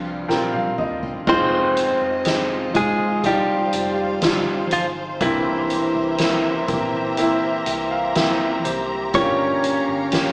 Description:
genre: pop ballad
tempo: 61 BPM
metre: 4/4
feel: straight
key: F minor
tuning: A4 = 440 Hz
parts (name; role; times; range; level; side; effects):
- direct-recorded clean electric guitar; melody; 0.0-10.3 s; E3 to Db5; -21 LUFS; equal; none
- clear baby grand piano; accompaniment; 0.0-10.3 s; G2 to G5; -22 LUFS; equal; none
- rich studio string section; sustained chords; 0.0-10.3 s; C3 to Bb5; -27 LUFS; equal; none
- picked steel-string acoustic guitar; arpeggios; 0.0-10.3 s; G2 to Ab4; -33 LUFS; equal; none
- vintage muted fingered electric bass; bass; 0.0-10.3 s; F1 to C2; -38 LUFS; equal; none
- soft-mallet drum kit; drums; 0.3-10.3 s; crash cymbal, hi-hat, kick drum, snare drum, toms; -26 LUFS; equal; none
room: moderate large studio reverb, RT60 1.2 s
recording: band playing live in one room, small speaker sound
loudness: -18 LUFS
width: side -30 dB against mid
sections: 0.0-1.3 A section; 1.3-10.3 B section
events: grand piano fill 0.0-1.3, 7.2-9.1; drum fill 0.3-1.3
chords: 0.0 Csus4; 1.3 Fm7; 5.2 C7; 9.1 Gm7b5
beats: 0.29 | 1.27 2.26 3.24 4.22 | 5.21 6.19 7.17 8.16 | 9.14 10.13

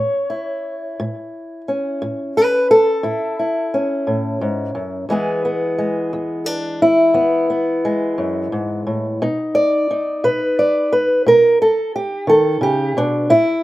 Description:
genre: acoustic country blues, solo or duo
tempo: 58 BPM (dotted quarters)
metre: 12/8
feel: straight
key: unclear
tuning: A4 = 442 Hz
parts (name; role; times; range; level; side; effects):
- fingerpicked old ladder-braced acoustic guitar; solo; 0.0-13.6 s; E2 to D5; -16 LUFS; equal; none
room: little or no reverb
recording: recorded outdoors, with no room sound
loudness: -15 LUFS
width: side -16 dB against mid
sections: 0.0-13.6 A section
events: none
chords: 0.0 A; 5.1 E; 9.2 B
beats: | 0.99 2.01 3.04 4.07 | 5.09 6.12 7.15 8.17 | 9.20 10.23 11.25 12.28 | 13.31

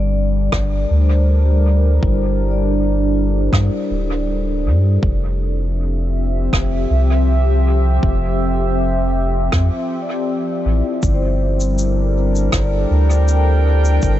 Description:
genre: ambient dub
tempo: 80 BPM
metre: 4/4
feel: straight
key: G dorian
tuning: A4 = 440 Hz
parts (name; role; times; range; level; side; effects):
- warbly tape-like pad; sustained chords; 0.0-14.2 s; F3 to G5; -21 LUFS; equal; chorus, built-in reverb, phaser
- vibraphone with soft mallets; arpeggios; 0.0-5.1, 10.0-14.2 s; E4 to D5; -26 LUFS; left 3 dB; tape echo
- soft dub sub bass; bass; 0.0-14.2 s; D1 to G2; -16 LUFS; equal; none
- electronic kick drum; drums; 0.5-14.2 s; none; -20 LUFS; equal; none
- rim click and shaker; drums; 0.5-14.2 s; none; -27 LUFS; right 1 dB; dub echo
room: small room ambience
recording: nothing above 8.0 kHz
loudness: -14 LUFS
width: side -13 dB against mid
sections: 0.0-14.2 A section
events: none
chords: 0.0 Gmadd9; 5.0 Fmaj9; 11.0 Gmadd9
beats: 0.53 1.28 | 2.03 2.78 3.53 4.28 | 5.03 5.78 6.53 7.28 | 8.03 8.78 9.53 10.28 | 11.03 11.78 12.53 13.28 | 14.03

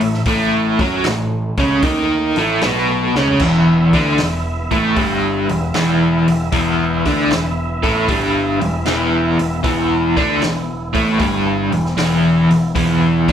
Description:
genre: blues rock power trio and southern rock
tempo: 77 BPM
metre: 4/4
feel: swing 68% on 8ths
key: unclear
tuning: A4 = 440 Hz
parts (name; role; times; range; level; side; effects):
- tonewheel organ; sustained chords; 0.0-13.3 s; A3 to E5; -27 LUFS; right 3 dB; chorus vibrato, fast rotary speaker
- crunchy overdriven guitar; riff; 0.0-13.3 s; E2 to F#4; -15 LUFS; equal; tremolo
- growling picked electric bass; bass; 0.0-13.3 s; E1 to F#2; -23 LUFS; equal; overdrive
- vintage drum kit; drums; 0.0-13.3 s; crash cymbal, hi-hat, kick drum, snare drum, toms; -24 LUFS; equal; none
room: moderate club reverb, RT60 0.6 s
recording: live gig heard through the venue's PA, club reverb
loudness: -14 LUFS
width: side -9 dB against mid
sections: 0.0-13.3 A section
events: drum fill 3.0-3.4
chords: 0.0 A5; 3.4 E5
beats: | 0.26 1.05 1.83 2.62 | 3.40 4.18 4.96 5.75 | 6.53 7.31 8.09 8.87 | 9.64 10.42 11.20 11.98 | 12.76

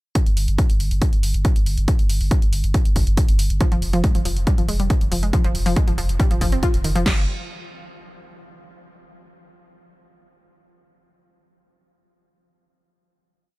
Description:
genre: driving peak-time techno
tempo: 139 BPM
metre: 4/4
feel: straight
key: unclear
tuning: A4 = 439 Hz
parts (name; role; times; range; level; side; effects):
- electronic hi-hat; drums; 0.2-7.0 s; none; -32 LUFS; right 1 dB; overdrive, sidechain pumping on hats
- techno drum kit; drums; 0.2-7.2 s; crash cymbal, kick drum, snare drum; -19 LUFS; equal; none
- warm sub bass; bass; 0.3-7.3 s; F1 to G1; -22 LUFS; equal; sidechain pumping, low-pass filter
- analog pluck; riff; 3.6-7.3 s; Eb3 to F4; -26 LUFS; equal; chorus, tube saturation, cassette tape, sidechain pumping, dub echo
room: digital ambience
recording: none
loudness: -17 LUFS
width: side -20 dB against mid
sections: 0.2-7.1 groove; 7.1-8.8 final chord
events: none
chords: none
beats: | 0.15 0.58 1.02 1.45 | 1.88 2.31 2.74 3.17 | 3.61 4.04 4.47 4.90 | 5.33 5.76 6.20 6.63 | 7.06

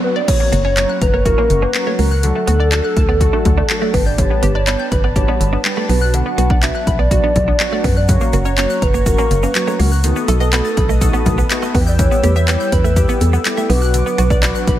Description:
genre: dance-pop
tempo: 123 BPM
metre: 4/4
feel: straight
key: B minor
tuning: A4 = 440 Hz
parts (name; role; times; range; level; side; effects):
- hollow clarinet-like synth lead; melody; 0.0-14.8 s; A4 to F#5; -20 LUFS; equal; chorus
- mellow synth brass; accompaniment; 0.0-14.8 s; F#3 to G4; -24 LUFS; equal; chorus, sidechain pumping
- hollow square pluck; arpeggios; 0.0-14.8 s; C#3 to A6; -27 LUFS; left 5 dB; chorus, sidechain pumping, tape echo
- chorused pulse-width pad; sustained chords; 0.3-14.8 s; A4 to E6; -27 LUFS; equal; sidechain pumping
- house drum kit; drums; 0.3-14.8 s; crash cymbal, handclaps, hi-hat, kick drum; -18 LUFS; equal; none
- direct-recorded clean electric guitar; riff; 0.4-14.6 s; A3 to D4; -25 LUFS; right 7 dB; analog chorus
- organ-like FM bass; bass; 0.5-14.8 s; F#1 to F#2; -16 LUFS; equal; sidechain pumping
- tube shaker; percussion; 8.1-14.7 s; none; -34 LUFS; right 8 dB; none
room: digital ambience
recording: none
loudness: -13 LUFS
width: side -12 dB against mid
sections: 0.3-14.8 A section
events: break 0.0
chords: 0.3 F#; 2.2 D; 3.9 G; 5.9 Bm; 8.1 F#; 10.0 B7; 11.7 Em; 13.7 Bm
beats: | 0.28 0.77 1.26 1.75 | 2.23 2.72 3.21 3.70 | 4.18 4.67 5.16 5.65 | 6.14 6.62 7.11 7.60 | 8.09 8.57 9.06 9.55 | 10.04 10.53 11.01 11.50 | 11.99 12.48 12.97 13.45 | 13.94 14.43

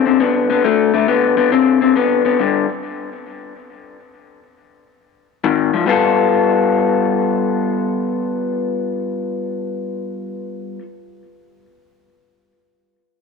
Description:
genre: blues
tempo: 138 BPM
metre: 4/4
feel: swing 67% on 8ths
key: G mixolydian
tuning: A4 = 439 Hz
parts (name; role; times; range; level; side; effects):
- electric guitar through a small old amp; solo; 0.0-2.7, 5.4-10.8 s; G2 to A4; -15 LUFS; left 5 dB; warbly pitch drift, tape echo
room: moderate echo chamber reverb, RT60 1.4 s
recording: none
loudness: -14 LUFS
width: side -4 dB against mid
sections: 0.0-5.9 A section; 5.9-9.4 B section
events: stop 2.4-5.4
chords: 0.0 D5; 2.4 G5; 5.4 Ab5; 5.9 G9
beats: 0.22 | 0.66 1.09 1.53 1.96 | 2.40 2.83 3.27 3.70 | 4.14 4.57 5.01 5.44 | 5.88 6.31 6.75 7.18 | 7.62 8.05 8.48 8.92

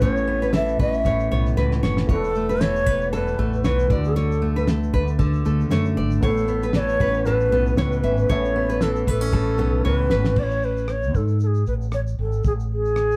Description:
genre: acoustic pop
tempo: 116 BPM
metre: 4/4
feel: swing 55% on 16ths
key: A major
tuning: A4 = 441 Hz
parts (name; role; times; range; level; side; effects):
- bright long shakuhachi; melody; 0.0-13.2 s; G#4 to E5; -26 LUFS; equal; plate reverb
- dark upright piano; accompaniment; 0.0-10.4 s; A3 to E5; -38 LUFS; equal; none
- fingerpicked steel-string acoustic guitar; accompaniment; 0.0-10.9 s; E2 to D4; -27 LUFS; equal; none
- nylon-string guitar; arpeggios; 0.0-10.2 s; A4 to E5; -32 LUFS; equal; none
- mellow fretless electric bass; bass; 0.0-13.2 s; E1 to G#2; -26 LUFS; equal; lush chorus
- cloth-damped thuddy drum kit; drums; 0.0-13.2 s; crash cymbal, kick drum, rim click, shaker, snare drum; -26 LUFS; equal; none
room: wet small room reverb, RT60 0.5 s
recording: heard from further back in the room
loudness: -21 LUFS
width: mono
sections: 0.0-10.4 A section; 10.4-13.2 B section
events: drum fill 1.6-2.1, 9.3-10.4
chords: 0.0 Aadd9; 2.1 Esus4; 3.9 D; 6.2 Aadd9; 10.4 Amaj7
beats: | 0.02 0.53 1.05 1.57 | 2.09 2.60 3.12 3.64 | 4.16 4.67 5.19 5.71 | 6.23 6.75 7.26 7.78 | 8.30 8.81 9.33 9.85 | 10.37 10.89 11.41 11.93 | 12.45 12.96

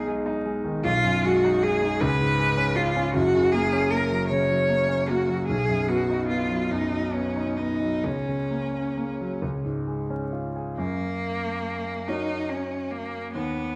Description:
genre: classical, romantic duo for cello and grand piano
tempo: 43-54 BPM (dotted quarters)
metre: 6/8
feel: rubato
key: F# major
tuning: A4 = 438 Hz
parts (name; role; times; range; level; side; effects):
- clear cello; melody; 0.0-13.8 s; A#3 to C#5; -28 LUFS; equal; none
- clear grand piano; accompaniment; 0.0-13.8 s; F#1 to C#5; -28 LUFS; equal; none
room: moderate scoring stage reverb, RT60 1.6 s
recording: vinyl crackle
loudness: -25 LUFS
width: mono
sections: 0.0-10.8 A section; 10.8-13.8 B section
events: none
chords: 0.0 Abm/Cb; 0.9 G#m7/B; 2.0 C#7; 3.1 F#; 5.5 B; 8.0 F#/C#; 9.4 C#; 10.8 F#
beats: | 0.85 2.01 | 3.15 4.30 | 5.49 6.71 | 8.04 9.42 | 10.78 12.08 | 13.34

